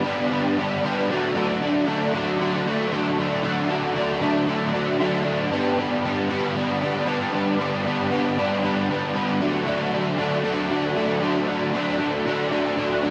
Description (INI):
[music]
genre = rock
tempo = 116 BPM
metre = 4/4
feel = straight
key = G major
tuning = A4 = 440 Hz
[part]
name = overdriven electric guitar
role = solo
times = 0.0-13.1 s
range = G2 to D4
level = -23 LUFS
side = equal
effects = ensemble chorus, tape echo
[sound]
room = wet lush hall reverb, RT60 2.1 s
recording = dreamy mix soaked in reverb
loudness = -23 LUFS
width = mono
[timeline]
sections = 0.0-13.1 A section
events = none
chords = 0.0 G; 1.1 D; 5.5 G; 9.4 D